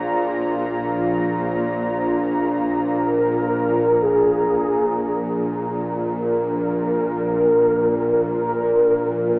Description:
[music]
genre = dark ambient drone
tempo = 55 BPM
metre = 4/4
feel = straight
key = unclear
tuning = A4 = 440 Hz
[part]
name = deep dark ambient pad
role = sustained chords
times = 0.0-9.4 s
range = F3 to Bb5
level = -25 LUFS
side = equal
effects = chorus, built-in reverb
[part]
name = bowed-like drone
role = drone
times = 0.0-9.4 s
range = Bb1 to Bb2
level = -23 LUFS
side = equal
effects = built-in reverb
[part]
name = bronze singing bowl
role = texture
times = 0.0-4.0 s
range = Ab4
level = -39 LUFS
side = equal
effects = none
[part]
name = mellow horn-like synth lead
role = melody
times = 2.9-9.4 s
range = Ab4 to Bb4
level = -19 LUFS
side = equal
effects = ensemble chorus, tape echo
[sound]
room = wet cathedral reverb, RT60 6.9 s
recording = AM radio sound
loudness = -18 LUFS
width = side -30 dB against mid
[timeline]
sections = 0.0-4.0 A section; 4.0-9.4 B section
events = none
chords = 0.0 Bb5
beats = 0.74 1.83 2.92 | 4.01 5.10 6.19 7.28 | 8.37

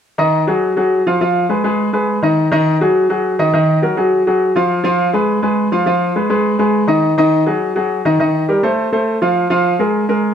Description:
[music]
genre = jazz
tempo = 206 BPM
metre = 4/4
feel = straight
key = unclear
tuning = A4 = 444 Hz
[part]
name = clear concert grand piano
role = solo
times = 0.2-10.3 s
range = Eb3 to F5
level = -13 LUFS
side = equal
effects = none
[sound]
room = moderate large studio reverb, RT60 1.1 s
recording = dark, warm production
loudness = -13 LUFS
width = side -8 dB against mid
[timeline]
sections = 0.0-10.3 A section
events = none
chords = 0.0 Ab5; 1.2 Abm6; 2.4 Ab5; 3.5 Ebm; 4.1 Fm; 4.7 Fdim; 5.9 Abm6; 7.0 Ab5; 8.2 Cm7; 8.8 F; 9.4 Bb5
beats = | 0.04 0.33 0.62 0.91 | 1.20 1.50 1.79 2.08 | 2.37 2.66 2.95 3.24 | 3.54 3.83 4.12 4.41 | 4.70 4.99 5.28 5.57 | 5.87 6.16 6.45 6.74 | 7.03 7.32 7.61 7.91 | 8.20 8.49 8.78 9.07 | 9.36 9.65 9.95 10.24

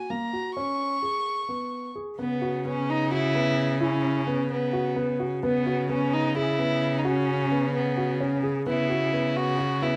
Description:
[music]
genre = contemporary instrumental, chamber music in an uneven meter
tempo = 260 BPM (eighths)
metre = 7/8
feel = straight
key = unclear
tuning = A4 = 440 Hz
[part]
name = dark violin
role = melody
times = 0.0-10.0 s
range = B3 to C#6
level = -30 LUFS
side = equal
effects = none
[part]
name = dark concert grand piano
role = arpeggios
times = 0.0-10.0 s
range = A#3 to G#4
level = -31 LUFS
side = equal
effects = none
[part]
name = clear cello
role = bass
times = 2.2-10.0 s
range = C#3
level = -30 LUFS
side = equal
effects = none
[sound]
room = light reverb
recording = close, detailed microphones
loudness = -26 LUFS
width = mono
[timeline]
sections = 0.0-2.2 A section; 2.2-10.0 B section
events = none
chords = 0.0 F#; 0.6 C#5; 2.2 Esus2/C#; 5.4 Bsus2/C#; 8.7 Esus2/C#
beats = 0.10 0.34 | 0.57 0.80 1.03 1.26 1.50 1.73 1.96 | 2.19 2.42 2.65 2.89 3.12 3.35 3.58 | 3.81 4.04 4.28 4.51 4.74 4.97 5.20 | 5.43 5.66 5.89 6.12 6.36 6.59 6.82 | 7.05 7.28 7.51 7.74 7.97 8.20 8.43 | 8.66 8.89 9.13 9.36 9.59 9.82

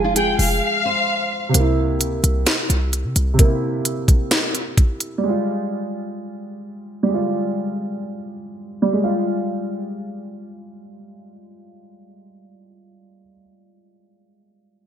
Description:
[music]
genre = hip hop, trap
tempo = 130 BPM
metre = 4/4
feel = half-time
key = F harmonic minor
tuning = A4 = 437 Hz
[part]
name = nylon-string guitar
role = melody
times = 0.0-1.5 s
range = F4 to C5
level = -23 LUFS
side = right 2 dB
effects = ensemble chorus, low-pass filter, digital delay
[part]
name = dark baby grand piano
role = accompaniment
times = 0.0-14.9 s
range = C3 to F4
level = -23 LUFS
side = right 1 dB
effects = analog chorus, low-pass filter
[part]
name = short 808-style bass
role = bass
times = 0.0-3.4 s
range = F1 to C3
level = -20 LUFS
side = equal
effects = none
[part]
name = warm symphonic violin section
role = second line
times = 0.2-1.5 s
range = F5 to G5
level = -21 LUFS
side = left 3 dB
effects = digital delay
[part]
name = trap drum kit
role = drums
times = 0.2-5.1 s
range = hi-hat, kick drum, snare drum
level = -16 LUFS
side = equal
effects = gated reverb
[sound]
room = moderate lush hall reverb, RT60 1.6 s, small room ambience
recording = bright 1980s-style digital production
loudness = -18 LUFS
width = side -9 dB against mid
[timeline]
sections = 0.0-1.5 A section; 1.5-8.9 B section; 8.9-12.6 C section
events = break 0.6-1.5; filter sweep on grand piano 1.5-8.9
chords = 0.0 Fm; 1.5 C7; 5.2 Fmadd9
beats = 0.16 0.62 1.08 | 1.54 2.00 2.47 2.93 | 3.39 3.85 4.31 4.77 | 5.24 5.70 6.16 6.62 | 7.08 7.54 8.01 8.47 | 8.93 9.39 9.85 10.31 | 10.77 11.24 11.70 12.16

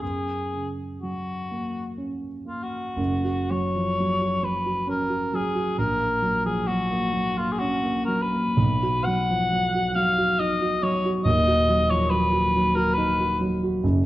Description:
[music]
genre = classical, romantic duo for cor anglais and grand piano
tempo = 55-71 BPM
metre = 3/4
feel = rubato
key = F# major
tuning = A4 = 439 Hz
[part]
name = mellow cor anglais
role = melody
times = 0.0-13.4 s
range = E#4 to F#5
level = -24 LUFS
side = left 1 dB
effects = none
[part]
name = dark concert grand piano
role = accompaniment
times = 0.0-14.1 s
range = D#1 to F#4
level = -24 LUFS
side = right 1 dB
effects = none
[sound]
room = wet recital hall reverb, RT60 1.5 s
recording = worn, warbling old tape, cassette tape, warbly pitch drift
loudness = -22 LUFS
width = side -15 dB against mid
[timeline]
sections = 0.0-3.0 A section; 3.0-14.1 B section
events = none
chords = 0.0 F#; 3.0 F#5; 5.8 F#/A#; 8.6 B; 11.2 D#madd9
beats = | 0.01 1.01 1.97 | 2.98 3.98 4.88 | 5.78 6.69 7.61 | 8.56 9.52 10.40 | 11.25 12.11 12.96 | 13.83

